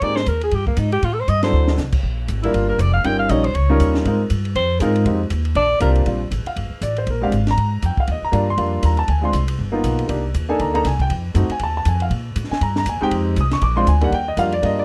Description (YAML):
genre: jazz, small-group swing and bop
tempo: 238 BPM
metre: 4/4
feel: swing 58% on 8ths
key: Bb major from 6.1 s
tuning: A4 = 440 Hz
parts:
  - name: clear alto saxophone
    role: second line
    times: 0.0-5.9 s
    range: Bb3 to G5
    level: -23 LUFS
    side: equal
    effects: none
  - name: warm concert grand piano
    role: accompaniment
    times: 0.0-14.8 s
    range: Eb2 to Eb6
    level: -23 LUFS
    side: equal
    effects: none
  - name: upright bass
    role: bass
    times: 0.0-14.8 s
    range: F1 to Bb2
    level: -22 LUFS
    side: equal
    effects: none
  - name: compact cocktail drum kit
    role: drums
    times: 0.0-14.7 s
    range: crash cymbal, hi-hat, kick drum, ride cymbal, snare drum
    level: -30 LUFS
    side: equal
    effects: none
room: light reverb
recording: dark, warm production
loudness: -19 LUFS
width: mono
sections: 0.0-6.1 A section; 6.1-14.1 A section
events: alto saxophone solo 0.0-6.1; drum fill 1.5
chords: 0.0 Abmaj7; 1.0 Am7; 1.5 D7; 2.0 Gm7; 3.0 Eb7; 4.0 Ab6; 5.1 Fm7; 5.6 Bb; 6.1 Bb69; 7.1 Bb7(no3); 8.1 Ebmaj9; 9.1 Dm7b5; 9.6 G7alt; 10.1 Cm9; 11.1 F7b9; 12.1 N.C.; 13.1 Fm7; 13.6 Bb7; 14.1 Ebmaj9